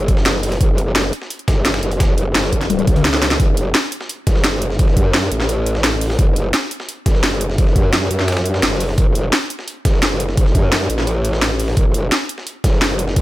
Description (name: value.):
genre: dark technical drum and bass.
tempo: 172 BPM.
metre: 4/4.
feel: straight.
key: F# phrygian.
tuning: A4 = 439 Hz.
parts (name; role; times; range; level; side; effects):
growl bass; bass; 0.0-13.2 s; F#1 to F#2; -18 LUFS; equal; chorus, tube saturation.
drum and bass drum kit; drums; 0.0-13.2 s; hi-hat, snare drum, toms; -18 LUFS; equal; overdrive.
breakbeat sampler-style drum kit; drums; 0.1-13.2 s; hi-hat, snare drum; -28 LUFS; equal; high-pass filter on snare, high-pass filter on hats.
electronic kick drum; drums; 0.1-13.2 s; none; -15 LUFS; equal; overdrive.
room: little or no reverb.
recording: none.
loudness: -14 LUFS.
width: side -16 dB against mid.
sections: 0.0-3.4 A section; 3.4-13.2 A section.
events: drop 0.0-3.4, 3.4-13.2; drum fill 2.7-3.4.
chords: none.